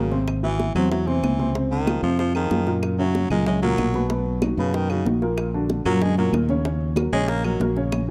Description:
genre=Afro-Cuban jazz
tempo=188 BPM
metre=4/4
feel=straight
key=Eb minor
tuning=A4 = 440 Hz
part: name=growling baritone saxophone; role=second line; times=0.0-7.6 s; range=Db3 to Bb3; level=-30 LUFS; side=equal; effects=none
part: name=warm baby grand piano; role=accompaniment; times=0.0-8.0 s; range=Bb2 to Db5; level=-28 LUFS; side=equal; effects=none
part: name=fingered electric bass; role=bass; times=0.0-8.1 s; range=Ab1 to Gb2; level=-27 LUFS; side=equal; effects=none
part: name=bongos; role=percussion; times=0.1-8.1 s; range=none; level=-33 LUFS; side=equal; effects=none
part: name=congas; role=percussion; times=0.1-8.0 s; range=none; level=-29 LUFS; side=equal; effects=none
part: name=claves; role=percussion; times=0.3-8.1 s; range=none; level=-42 LUFS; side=equal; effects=none
room=light reverb, small room ambience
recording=dry, close 1970s-style studio recording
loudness=-22 LUFS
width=mono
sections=0.0-8.1 A section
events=baritone saxophone solo 0.0-8.1; drum fill 7.9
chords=0.3 Abaug7; 1.6 Dbmaj9; 2.8 Gb7; 4.1 B; 5.4 Bbaug; 6.7 Ebm7

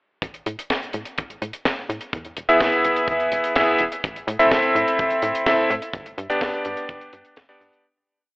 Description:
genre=italo disco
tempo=126 BPM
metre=4/4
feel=straight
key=unclear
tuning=A4 = 442 Hz
part: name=tight sequencer bass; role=bass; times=0.2-7.7 s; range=E1 to A2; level=-32 LUFS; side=equal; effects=tube saturation, tape echo
part: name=kick drum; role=drums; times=0.2-7.5 s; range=none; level=-27 LUFS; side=equal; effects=small room ambience
part: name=tight funk drum kit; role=drums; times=0.2-7.8 s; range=hi-hat, snare drum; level=-28 LUFS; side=equal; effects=small room ambience
part: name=bright electric grand piano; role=stabs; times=2.5-7.8 s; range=B3 to E5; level=-18 LUFS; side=equal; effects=tape echo
room=light reverb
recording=dry, gritty hardware recording, cassette tape, telephone sound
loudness=-19 LUFS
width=side -31 dB against mid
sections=0.2-7.8 verse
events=fade-out 5.3-7.8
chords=0.2 N.C.; 2.1 E; 4.0 Am; 5.9 G

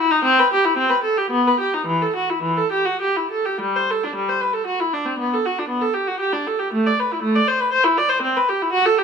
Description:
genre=classical, baroque-style suite movement for unaccompanied viola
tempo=98-122 BPM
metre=3/4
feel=rubato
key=E minor, G major from 3.6 s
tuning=A4 = 440 Hz
part: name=rich viola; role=solo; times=0.0-9.0 s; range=E3 to D5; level=-17 LUFS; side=equal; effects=none
room=moderate stone room reverb, RT60 1.4 s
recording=minimal, uncompressed stereo recording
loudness=-17 LUFS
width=side -6 dB against mid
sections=0.0-3.6 A section; 3.6-9.0 A section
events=none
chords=none

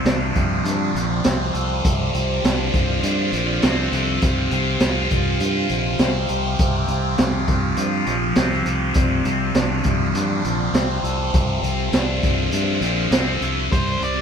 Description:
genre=psychedelic rock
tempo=101 BPM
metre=4/4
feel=straight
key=unclear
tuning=A4 = 440 Hz
part: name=combo organ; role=sustained chords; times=0.0-13.7 s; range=F4 to D6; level=-32 LUFS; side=right 8 dB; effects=none
part: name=thick fuzz guitar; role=riff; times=0.0-14.2 s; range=C3 to A4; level=-22 LUFS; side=left 1 dB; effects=distortion, phaser
part: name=fingered electric bass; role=bass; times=0.0-14.2 s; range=Bb1 to G2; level=-24 LUFS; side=equal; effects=none
part: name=crunchy breakbeat drum kit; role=drums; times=0.1-14.2 s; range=hi-hat, kick drum, snare drum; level=-22 LUFS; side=equal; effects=none
part: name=octave-fuzz lead guitar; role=melody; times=13.7-14.2 s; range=C5 to D5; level=-24 LUFS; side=right 1 dB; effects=distortion
room=light reverb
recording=band playing live in one room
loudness=-18 LUFS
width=side -7 dB against mid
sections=0.0-13.7 A section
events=none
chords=0.0 Dm7; 4.2 Csus4; 9.0 Dm7

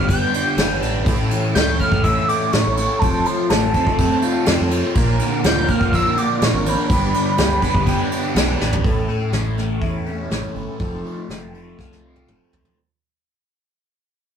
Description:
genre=psychedelic rock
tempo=123 BPM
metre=4/4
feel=straight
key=unclear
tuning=A4 = 440 Hz
part: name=hollow square lead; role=melody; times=0.0-8.4 s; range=A5 to G6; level=-22 LUFS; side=right 1 dB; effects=chorus
part: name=overdriven electric guitar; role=riff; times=0.0-12.8 s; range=G2 to F4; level=-22 LUFS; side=left 1 dB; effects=phaser
part: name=fingered electric bass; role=bass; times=0.0-12.6 s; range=F1 to Bb2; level=-24 LUFS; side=equal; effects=none
part: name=soft brush drum kit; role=drums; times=0.1-12.8 s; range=crash cymbal, hi-hat, kick drum, snare drum, toms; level=-21 LUFS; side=equal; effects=none
part: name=bright tonewheel organ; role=sustained chords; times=1.0-12.7 s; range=A3 to B4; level=-29 LUFS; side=right 3 dB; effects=slow rotary speaker
room=wet small room reverb, RT60 0.5 s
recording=rough rehearsal-room recording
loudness=-16 LUFS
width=side -8 dB against mid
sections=0.0-8.8 A section; 8.8-12.8 B section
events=drum fill 8.6, 11.8-12.8; fade-out 8.8-12.8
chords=0.0 G; 1.1 A; 3.0 F; 4.9 Bb; 6.9 G; 8.8 A; 10.8 F

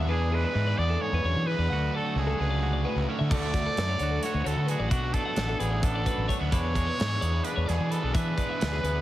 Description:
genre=math rock and midwest emo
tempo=261 BPM (eighths)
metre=7/8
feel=straight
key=unclear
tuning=A4 = 440 Hz
part: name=twangy electric guitar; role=accompaniment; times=0.0-9.0 s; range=D2 to F#4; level=-36 LUFS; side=right 6 dB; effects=wide subtle chorus
part: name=twelve-string electric guitar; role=arpeggios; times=0.0-9.0 s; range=F#4 to F#5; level=-35 LUFS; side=left 4 dB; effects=none
part: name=biting overdriven guitar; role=riff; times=0.0-9.0 s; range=B2 to G#4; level=-34 LUFS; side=equal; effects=none
part: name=fuzz fingered electric bass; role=bass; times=0.0-9.0 s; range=A1 to E3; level=-28 LUFS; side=equal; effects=overdrive
part: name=clear trumpet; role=melody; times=0.1-9.0 s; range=F#4 to D5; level=-32 LUFS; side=right 2 dB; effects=slapback echo
part: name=modern studio drum kit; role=drums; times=3.3-8.9 s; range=crash cymbal, hi-hat, kick drum, snare drum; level=-31 LUFS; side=equal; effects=none
room=little or no reverb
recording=heavily compressed radio sound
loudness=-24 LUFS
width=side -14 dB against mid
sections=0.0-9.0 A section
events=none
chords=0.1 E7; 1.7 Dmaj7; 6.5 E7

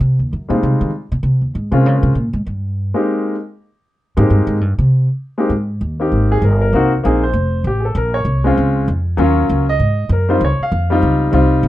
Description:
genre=jazz piano trio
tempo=196 BPM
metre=4/4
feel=swing 62% on 8ths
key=Ab major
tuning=A4 = 439 Hz
part: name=upright bass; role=bass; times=0.0-11.7 s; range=F1 to Eb3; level=-15 LUFS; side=equal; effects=none
part: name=clear baby grand piano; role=melody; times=0.5-11.6 s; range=Gb3 to F5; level=-16 LUFS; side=left 1 dB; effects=none
room=moderate studio ambience, RT60 0.5 s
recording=rough home demo mix, nothing above 10.8 kHz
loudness=-14 LUFS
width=side -15 dB against mid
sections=0.0-5.5 A section; 5.5-11.7 A section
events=upright bass solo 0.0-5.5; grand piano solo 5.5-11.7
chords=0.0 Ab7 (rootless); 0.6 Dbmaj9#11 (rootless); 1.8 Bbm7; 2.4 Abmaj7; 6.7 Cm7b5; 7.3 F; 8.0 Bbm7; 9.2 Ebm7; 9.8 Ab7; 10.4 Dbmaj9#11

